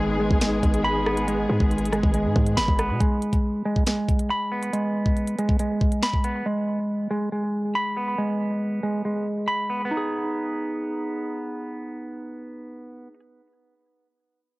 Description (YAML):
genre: hip hop, drill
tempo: 139 BPM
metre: 4/4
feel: half-time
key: G# minor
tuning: A4 = 440 Hz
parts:
  - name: muted symphonic string section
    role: sustained chords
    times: 0.0-3.0 s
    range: D#3 to G#4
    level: -27 LUFS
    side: left 2 dB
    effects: cassette tape
  - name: clean electric guitar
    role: arpeggios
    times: 0.0-13.2 s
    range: G#3 to B5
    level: -25 LUFS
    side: right 1 dB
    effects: cassette tape, analog delay
  - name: hard-hitting 808-style bass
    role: bass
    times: 0.0-3.0 s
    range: G#1 to B2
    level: -27 LUFS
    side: equal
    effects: none
  - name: drill drum kit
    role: drums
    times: 0.3-6.3 s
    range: finger snaps, hi-hat, kick drum, rim click, snare drum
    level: -23 LUFS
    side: equal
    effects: cassette tape
room: little or no reverb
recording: home recording on cassette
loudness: -22 LUFS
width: side -21 dB against mid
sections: 0.0-3.0 A section; 3.0-9.9 B section; 9.9-13.4 C section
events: none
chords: 0.0 G#m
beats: 0.41 0.85 | 1.28 1.71 2.14 2.57 | 3.00 3.44 3.87 4.30 | 4.73 5.16 5.59 6.03 | 6.46 6.89 7.32 7.75 | 8.19 8.62 9.05 9.48 | 9.91 10.34 10.78 11.21 | 11.64 12.07 12.50 12.93